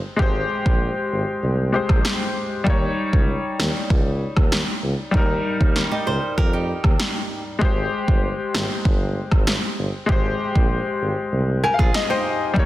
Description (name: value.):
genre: dancehall.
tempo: 97 BPM.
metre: 4/4.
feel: straight.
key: Ab major.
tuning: A4 = 440 Hz.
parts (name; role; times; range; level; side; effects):
clear grand piano; accompaniment; 0.0-12.7 s; G3 to Ab5; -24 LUFS; left 3 dB; none.
warm tuba; bass; 0.2-12.7 s; G1 to F2; -25 LUFS; equal; none.
deep house drum kit; drums; 0.2-12.7 s; kick drum, rim click, snare drum; -20 LUFS; equal; overdrive.
flamenco guitar; arpeggios; 5.9-7.4, 11.6-12.5 s; Eb4 to C5; -26 LUFS; right 4 dB; none.
room: light reverb.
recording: dense, heavily limited modern master.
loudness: -18 LUFS.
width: side -15 dB against mid.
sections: 0.0-12.7 A section.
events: grand piano fill 11.3-12.6.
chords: 0.0 Abmaj7; 2.7 Eb7; 7.6 Abmaj7.